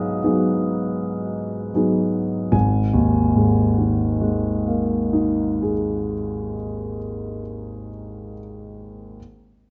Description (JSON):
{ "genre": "classical, impressionist solo piano", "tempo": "36-45 BPM", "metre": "3/4", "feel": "rubato", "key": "G# minor", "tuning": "A4 = 440 Hz", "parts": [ { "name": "clear concert grand piano", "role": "solo", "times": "0.0-9.2 s", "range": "G#1 to G#6", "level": "-22 LUFS", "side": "equal", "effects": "none" } ], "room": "moderate large studio reverb, RT60 1.4 s", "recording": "nothing above 7.8 kHz", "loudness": "-21 LUFS", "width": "mono", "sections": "0.0-2.5 A section; 2.5-6.9 B section", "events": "slowing down 0.0-2.5", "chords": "0.0 G#m7; 2.5 G#sus2", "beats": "0.94 | 2.53 4.01 5.46" }